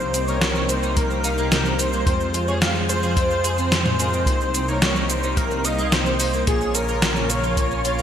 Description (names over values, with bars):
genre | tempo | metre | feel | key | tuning
synthwave | 109 BPM | 4/4 | straight | C phrygian | A4 = 440 Hz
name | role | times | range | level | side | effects
wide unison lead | melody | 0.0-8.0 s | Ab4 to F5 | -25 LUFS | equal | cassette tape, digital delay
airy dreamy lead | second line | 0.0-8.0 s | Ab4 to F5 | -32 LUFS | equal | chorus, cassette tape, digital delay
phased analog pad | sustained chords | 0.0-8.0 s | C3 to Bb4 | -30 LUFS | right 2 dB | phaser, chorus, sidechain pumping
analog synth brass | stabs | 0.0-8.0 s | Bb2 to F5 | -28 LUFS | left 3 dB | chorus, cassette tape, digital delay
dark detuned saw bass | bass | 0.0-8.0 s | Bb1 to F2 | -26 LUFS | equal | sidechain pumping
gated 80s digital drum machine | drums | 0.0-8.0 s | hi-hat, shaker, snare drum, toms | -23 LUFS | equal | gated reverb, gated reverb snare, overdrive
clean electric guitar | arpeggios | 0.1-8.0 s | Bb3 to Ab4 | -31 LUFS | right 2 dB | analog chorus, digital delay
kick drum | drums | 1.0-7.7 s | none | -24 LUFS | equal | none
room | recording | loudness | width
moderate lush hall reverb, RT60 2.8 s | bright 1980s-style digital production | -18 LUFS | side -9 dB against mid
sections
0.0-8.0 A section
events
none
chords
0.0 Cm7; 2.1 Fm; 4.3 Cm7; 6.5 Bbm